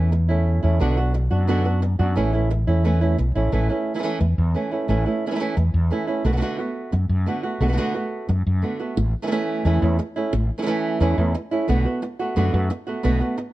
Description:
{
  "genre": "flamenco",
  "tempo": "176 BPM",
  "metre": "4/4",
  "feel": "straight",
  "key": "A major",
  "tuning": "A4 = 441 Hz",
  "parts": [
    { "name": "flamenco guitar", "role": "stabs", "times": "0.0-13.4 s", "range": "B2 to F#4", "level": "-23 LUFS", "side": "right 2 dB", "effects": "none" },
    { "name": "fretless electric bass", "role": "bass", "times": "0.0-13.2 s", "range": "A1 to F#2", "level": "-19 LUFS", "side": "equal", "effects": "none" }
  ],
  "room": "light reverb",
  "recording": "dark, warm production",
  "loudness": "-19 LUFS",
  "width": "side -16 dB against mid",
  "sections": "0.0-3.5 A section; 3.5-9.0 B section; 9.0-13.5 B section",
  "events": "none",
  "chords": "0.0 A; 0.8 Bm; 2.2 A; 6.3 Bm7; 9.0 A; 11.7 Bm7",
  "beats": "0.13 0.47 | 0.81 1.15 1.49 1.83 | 2.17 2.51 2.85 3.19 | 3.53 3.87 4.21 4.55 | 4.89 5.23 5.57 5.91 | 6.25 6.59 6.93 7.27 | 7.62 7.96 8.30 8.64 | 8.98 9.31 9.65 9.99 | 10.33 10.67 11.01 11.35 | 11.69 12.03 12.37 12.71 | 13.04 13.38"
}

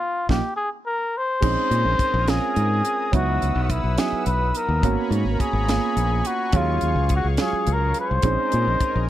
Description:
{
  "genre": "electric jazz fusion",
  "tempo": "70 BPM (dotted quarters)",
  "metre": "6/8",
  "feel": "straight",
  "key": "Bb phrygian",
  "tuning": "A4 = 440 Hz",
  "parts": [
    { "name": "trumpet with cup mute", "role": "melody", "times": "0.0-9.1 s", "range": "Fb4 to C5", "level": "-24 LUFS", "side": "left 2 dB", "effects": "slapback echo" },
    { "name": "dark concert grand piano", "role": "accompaniment", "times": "0.3-9.0 s", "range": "Gb3 to Gb4", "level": "-27 LUFS", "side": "right 9 dB", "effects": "none" },
    { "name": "modern bright fingered electric bass", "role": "bass", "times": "0.3-9.1 s", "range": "Ab1 to Bb2", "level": "-22 LUFS", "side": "left 1 dB", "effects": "none" },
    { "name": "tight funk drum kit", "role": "drums", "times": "0.3-8.9 s", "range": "crash cymbal, hi-hat, kick drum, snare drum", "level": "-24 LUFS", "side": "equal", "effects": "none" },
    { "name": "warm analog pad", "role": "sustained chords", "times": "1.4-9.1 s", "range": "Ab4 to Fb6", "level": "-34 LUFS", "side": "left 2 dB", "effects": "chorus, tremolo" }
  ],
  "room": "small room ambience",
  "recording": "dry, close 1970s-style studio recording",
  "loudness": "-19 LUFS",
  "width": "side -13 dB against mid",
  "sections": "0.0-1.4 A section; 1.4-9.1 B section",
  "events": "band accent 0.0-1.4; grand piano fill 0.6-1.4; drum fill 1.1",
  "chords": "0.0 Bbsus4; 1.4 Bbm11; 3.1 Dbm11; 4.8 Abm11; 6.5 Ebm11; 8.2 Bbm11",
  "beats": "0.58 | 1.43 2.28 | 3.13 3.98 | 4.83 5.68 | 6.54 7.39 | 8.24 9.09"
}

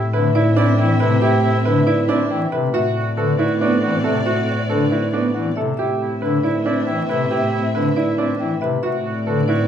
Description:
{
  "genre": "classical, minimalist pattern music",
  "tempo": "276 BPM (eighths)",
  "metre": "7/8",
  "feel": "straight",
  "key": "unclear",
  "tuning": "A4 = 437 Hz",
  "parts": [
    { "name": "warm oboe", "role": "second line", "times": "0.0-9.6 s", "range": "E4 to F#4", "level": "-28 LUFS", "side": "right 2 dB", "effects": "none" },
    { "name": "rich symphonic violin section", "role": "sustained chords", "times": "0.0-9.7 s", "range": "C4 to E5", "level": "-26 LUFS", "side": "left 1 dB", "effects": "none" },
    { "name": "rich studio double bass section", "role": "bass", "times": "0.0-9.7 s", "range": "A2", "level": "-22 LUFS", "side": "equal", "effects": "none" },
    { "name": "marimba with medium hard mallets", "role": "melody", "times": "0.1-9.7 s", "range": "B4 to G5", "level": "-26 LUFS", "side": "left 8 dB", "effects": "none" },
    { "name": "pipe organ, foundations", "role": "accompaniment", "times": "0.1-9.4 s", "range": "C3 to C4", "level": "-23 LUFS", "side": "left 2 dB", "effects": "none" },
    { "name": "bright grand piano", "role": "arpeggios", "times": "0.1-9.7 s", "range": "D4 to B4", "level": "-22 LUFS", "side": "right 4 dB", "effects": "none" }
  ],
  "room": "wet large studio reverb, RT60 1.4 s",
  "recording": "dark, warm production, vinyl crackle",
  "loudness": "-16 LUFS",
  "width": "side -9 dB against mid",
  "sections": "0.0-9.7 A section",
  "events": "none",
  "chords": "0.0 Cmaj7/A; 2.7 D9/A; 5.8 Cmaj7/A; 8.8 D9/A",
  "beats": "0.13 0.35 0.56 0.78 1.00 | 1.22 1.43 1.65 1.87 2.08 2.30 2.52 | 2.74 2.96 3.17 3.39 3.61 3.82 4.04 | 4.26 4.48 4.69 4.91 5.13 5.35 5.56 | 5.78 6.00 6.21 6.43 6.65 6.87 7.08 | 7.30 7.52 7.74 7.96 8.17 8.39 8.61 | 8.82 9.04 9.26 9.48"
}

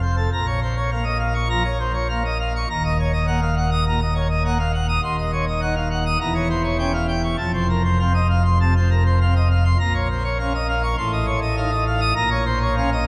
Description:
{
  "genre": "classical, organ toccata",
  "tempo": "102 BPM",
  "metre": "4/4",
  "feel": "straight",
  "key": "Bb minor",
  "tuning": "A4 = 440 Hz",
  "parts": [
    { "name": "pipe organ, plenum", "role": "solo", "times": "0.0-13.1 s", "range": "Eb1 to Eb6", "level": "-21 LUFS", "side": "equal", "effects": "none" }
  ],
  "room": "wet church reverb, RT60 3.0 s",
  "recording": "none",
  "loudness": "-21 LUFS",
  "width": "mono",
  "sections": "0.3-13.1 A section",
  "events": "none",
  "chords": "0.3 Bbm; 2.7 Ebm; 5.0 Cdim/Eb; 6.2 Edim7; 7.4 F; 9.8 Bbm; 11.0 F7/A; 12.2 Bbm",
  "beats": "| 0.32 0.91 1.50 2.09 | 2.69 3.28 3.86 4.44 | 5.03 5.61 6.20 6.79 | 7.39 7.99 8.59 9.20 | 9.80 10.39 10.99 11.58 | 12.17 12.76"
}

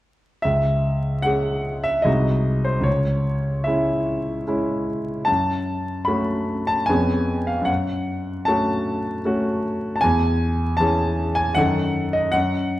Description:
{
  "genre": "classical, romantic character piece for solo piano",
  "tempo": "76 BPM",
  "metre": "3/4",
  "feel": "rubato",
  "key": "C# minor",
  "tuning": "A4 = 441 Hz",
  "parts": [
    { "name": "clear concert grand piano", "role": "solo", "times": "0.4-12.8 s", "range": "B#1 to B5", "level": "-19 LUFS", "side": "equal", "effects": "none" }
  ],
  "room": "wet recital hall reverb, RT60 1.5 s",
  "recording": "vinyl crackle",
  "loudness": "-19 LUFS",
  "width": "side -15 dB against mid",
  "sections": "0.4-12.8 A section",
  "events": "none",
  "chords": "0.4 C#m; 2.1 G#7/B#; 2.9 C#m; 5.3 F#m; 6.9 C#7/E#; 7.7 F#m; 10.0 C#m/E; 11.6 D#dim/F#",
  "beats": "| 0.43 1.25 2.07 | 2.87 3.67 4.47 | 5.28 6.07 6.88 | 7.68 8.48 9.25 | 10.02 10.79 11.57 | 12.34"
}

